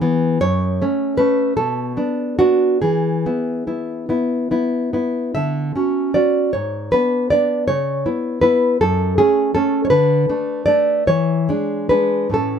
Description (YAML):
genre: romantic piece for solo classical guitar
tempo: 43-56 BPM (dotted quarters)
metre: 6/8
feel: rubato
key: unclear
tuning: A4 = 439 Hz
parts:
  - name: nylon-string guitar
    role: solo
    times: 0.0-12.6 s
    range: F#2 to E5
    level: -16 LUFS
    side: equal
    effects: none
room: light reverb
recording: close, detailed microphones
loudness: -16 LUFS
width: side -7 dB against mid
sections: 0.0-12.6 A section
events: none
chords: 0.4 F#m; 1.6 Bm7; 2.8 E; 5.4 Dmaj7; 6.5 G#dim; 7.7 C#m7; 8.8 F#m; 9.9 Bm7/D; 11.1 E7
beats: | 0.41 1.56 | 2.82 4.10 | 5.36 6.54 | 7.68 8.81 | 9.90 11.06 | 12.35